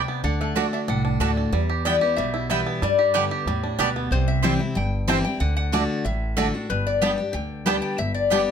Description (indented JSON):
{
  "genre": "bluegrass",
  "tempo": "186 BPM",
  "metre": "4/4",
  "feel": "straight",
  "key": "G major",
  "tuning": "A4 = 439 Hz",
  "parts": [
    { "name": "bluegrass banjo", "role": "melody", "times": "0.0-8.4 s", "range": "G3 to G4", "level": "-28 LUFS", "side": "right 5 dB", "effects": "none" },
    { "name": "lap resonator guitar", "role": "melody", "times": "0.0-8.4 s", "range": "A4 to A5", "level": "-26 LUFS", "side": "left 6 dB", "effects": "none" },
    { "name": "picked steel-string acoustic guitar", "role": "accompaniment", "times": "0.0-8.5 s", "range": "E2 to G4", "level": "-26 LUFS", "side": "left 2 dB", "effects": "none" },
    { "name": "upright bass", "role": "bass", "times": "0.0-8.4 s", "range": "G1 to G2", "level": "-26 LUFS", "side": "right 1 dB", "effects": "none" },
    { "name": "mandolin", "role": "stabs", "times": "0.6-8.4 s", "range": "A3 to A5", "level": "-25 LUFS", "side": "right 8 dB", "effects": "none" }
  ],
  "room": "light reverb",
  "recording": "close, detailed microphones",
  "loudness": "-20 LUFS",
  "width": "side -8 dB against mid",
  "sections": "0.0-4.1 A section; 4.1-8.5 B section",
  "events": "none",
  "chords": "0.2 D; 1.5 Em; 2.8 Gadd9; 4.1 C; 5.4 D; 6.7 G"
}